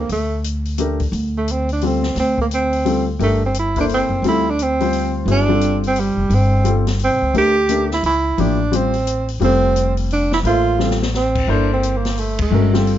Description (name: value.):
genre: modal jazz.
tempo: 174 BPM.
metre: 3/4.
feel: swing 62% on 8ths.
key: D minor.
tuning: A4 = 440 Hz.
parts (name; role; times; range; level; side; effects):
breathy tenor saxophone; melody; 0.0-12.8 s; G3 to G4; -19 LUFS; right 3 dB; none.
upright bass; bass; 0.0-13.0 s; F1 to D2; -20 LUFS; equal; none.
open jazz drum kit; drums; 0.1-13.0 s; crash cymbal, hi-hat, kick drum, ride cymbal, snare drum; -28 LUFS; left 3 dB; none.
warm baby grand piano; accompaniment; 0.8-13.0 s; F3 to E5; -21 LUFS; left 4 dB; none.
room: light reverb.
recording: nothing above 7.6 kHz.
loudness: -15 LUFS.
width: side -11 dB against mid.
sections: 0.0-13.0 A section.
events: drum fill 10.8-11.1; band accent 12.3.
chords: 0.0 D7sus4; 3.2 Gm11; 7.3 Dm11; 11.5 Gm11.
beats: | 0.10 0.44 0.79 | 1.13 1.48 1.82 | 2.17 2.51 2.85 | 3.20 3.54 3.89 | 4.24 4.58 4.92 | 5.27 5.62 5.96 | 6.30 6.65 6.99 | 7.34 7.68 8.03 | 8.37 8.72 9.06 | 9.41 9.75 10.10 | 10.44 10.79 11.13 | 11.48 11.82 12.16 | 12.51 12.85.